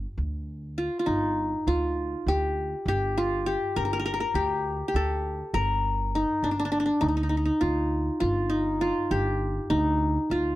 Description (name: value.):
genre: Turkish makam ensemble.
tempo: 202 BPM (eighths).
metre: 9/8.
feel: straight.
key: G makam nihavent.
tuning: A4 = 440 Hz.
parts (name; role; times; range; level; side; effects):
qanun; melody; 0.0-10.6 s; D4 to Bb4; -25 LUFS; equal; none.
upright bass; bass; 0.0-10.6 s; G1 to D2; -30 LUFS; equal; none.
room: little or no reverb.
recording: dry, close 1970s-style studio recording.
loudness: -24 LUFS.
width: side -16 dB against mid.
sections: 0.0-1.1 A section; 1.1-10.6 B section.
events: none.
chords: none.